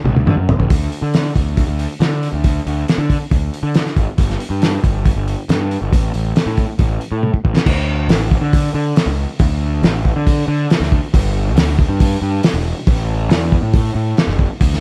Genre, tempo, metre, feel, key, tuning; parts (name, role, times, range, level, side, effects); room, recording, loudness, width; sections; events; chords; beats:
indie rock; 138 BPM; 4/4; straight; D major; A4 = 440 Hz
fuzz picked electric bass; bass; 0.0-14.8 s; E1 to D3; -20 LUFS; equal; overdrive
cloth-damped thuddy drum kit; drums; 0.1-14.8 s; crash cymbal, hi-hat, kick drum, snare drum, toms; -18 LUFS; equal
little or no reverb; dark, warm production; -16 LUFS; mono
0.7-7.7 A section; 7.7-14.8 A section
drum fill 0.0-0.7, 7.2-7.7
0.26 | 0.69 1.13 1.56 2.00 | 2.44 2.87 3.31 3.74 | 4.18 4.62 5.05 5.49 | 5.92 6.36 6.79 7.23 | 7.67 8.10 8.53 8.97 | 9.40 9.84 10.27 10.70 | 11.14 11.57 12.00 12.44 | 12.87 13.30 13.74 14.17 | 14.61